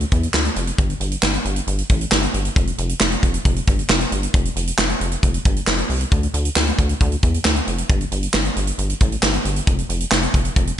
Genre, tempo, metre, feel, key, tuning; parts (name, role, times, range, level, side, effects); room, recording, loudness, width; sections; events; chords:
synth-pop; 135 BPM; 4/4; straight; F major; A4 = 440 Hz
rubbery square bass; bass; 0.0-10.7 s; F1 to E2; -22 LUFS; equal
modern studio drum kit; drums; 0.0-10.8 s; handclaps, hi-hat, kick drum, snare drum; -18 LUFS; equal
light reverb; nothing above 10.8 kHz; -17 LUFS; side -10 dB against mid
0.0-10.8 A section